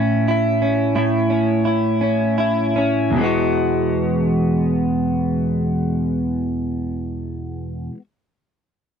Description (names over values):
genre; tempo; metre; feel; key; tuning
pop; 50-61 BPM (dotted quarters); 6/8; straight; E major; A4 = 443 Hz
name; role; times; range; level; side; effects
direct-recorded clean electric guitar; accompaniment; 0.0-8.0 s; E2 to F#4; -17 LUFS; equal; double-tracked left and right
room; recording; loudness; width
light reverb; dry, close 1970s-style studio recording; -17 LUFS; side -7 dB against mid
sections
0.0-3.2 A section; 3.2-7.9 B section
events
slowing down 0.0-3.2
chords
0.0 A; 3.2 Eadd9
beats
| 0.95 2.01 | 3.15 4.34 | 5.53 6.71